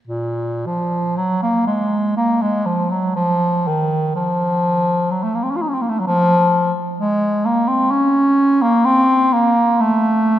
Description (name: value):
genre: classical, free, expressive piece for unaccompanied bass clarinet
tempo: 46-65 BPM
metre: 3/4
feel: rubato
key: Bb minor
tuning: A4 = 441 Hz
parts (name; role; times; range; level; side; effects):
- clear bass clarinet; solo; 0.1-10.4 s; Bb2 to F4; -15 LUFS; equal; none
room: wet concert hall reverb, RT60 2.5 s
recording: none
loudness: -15 LUFS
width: side -12 dB against mid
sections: 0.1-10.4 A section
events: none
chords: none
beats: | 0.09 1.18 2.17 | 3.17 4.15 5.12 | 6.07 7.00 7.92 | 8.86 9.80